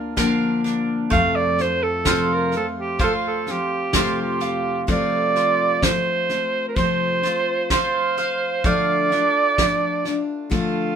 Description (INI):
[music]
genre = acoustic folk duo or small band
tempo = 64 BPM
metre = 4/4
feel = straight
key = F major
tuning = A4 = 440 Hz
[part]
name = picked steel-string acoustic guitar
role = accompaniment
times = 0.0-11.0 s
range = F2 to F4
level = -25 LUFS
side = left 4 dB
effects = none
[part]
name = mandolin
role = arpeggios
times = 0.0-11.0 s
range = A3 to F5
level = -26 LUFS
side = right 4 dB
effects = none
[part]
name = upright bass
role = bass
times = 0.0-4.8 s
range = D2 to F2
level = -31 LUFS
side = equal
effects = none
[part]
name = soft brush drum kit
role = drums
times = 0.2-10.7 s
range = kick drum, snare drum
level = -23 LUFS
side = equal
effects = none
[part]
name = clear alto saxophone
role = melody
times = 1.1-11.0 s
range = F4 to F5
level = -21 LUFS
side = right 3 dB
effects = none
[sound]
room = moderate studio reverb, RT60 0.6 s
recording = minimal, uncompressed stereo recording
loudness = -18 LUFS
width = side -8 dB against mid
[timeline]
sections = 0.0-4.9 A section; 4.9-11.0 B section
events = alto saxophone solo 0.0-4.9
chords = 0.0 Bb/D; 1.1 F; 8.6 Dm